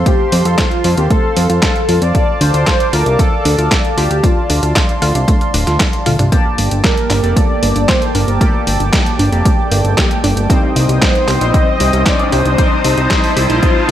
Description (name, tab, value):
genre	italo disco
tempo	115 BPM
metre	4/4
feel	straight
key	unclear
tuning	A4 = 441 Hz
part	wide unison lead	melody	0.0-13.9 s	F4 to Eb5	-18 LUFS	equal	lush chorus, tape echo
part	warm analog pad	sustained chords	0.0-13.9 s	Bb3 to Eb6	-21 LUFS	right 1 dB	chorus
part	fat analog bass	bass	0.0-13.9 s	D1 to F2	-15 LUFS	equal	none
part	wide unison pluck	arpeggios	0.1-13.9 s	A3 to C5	-23 LUFS	right 1 dB	cassette tape, tape echo
part	detuned 8-bit digital drum machine	drums	0.1-13.9 s	handclaps, hi-hat, snare drum, toms	-18 LUFS	equal	studio reverb
part	electronic kick drum	drums	0.1-13.7 s	none	-15 LUFS	equal	studio reverb
part	chorused polysynth	stabs	6.3-13.9 s	G3 to A5	-21 LUFS	left 2 dB	phaser
part	riser	sound effects	8.1-13.9 s	none	-23 LUFS	left 1 dB	none
room	light reverb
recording	none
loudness	-11 LUFS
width	side -11 dB against mid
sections	0.0-6.3 A section; 6.3-13.9 B section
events	drum fill 6.1; riser 8.1-13.9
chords	0.0 F; 2.1 Dm; 6.3 Gmadd9; 10.5 Cm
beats	| 0.06 0.58 1.11 1.63 | 2.15 2.67 3.19 3.71 | 4.24 4.76 5.28 5.80 | 6.32 6.84 7.37 7.89 | 8.41 8.93 9.45 9.98 | 10.50 11.02 11.54 12.06 | 12.59 13.11 13.63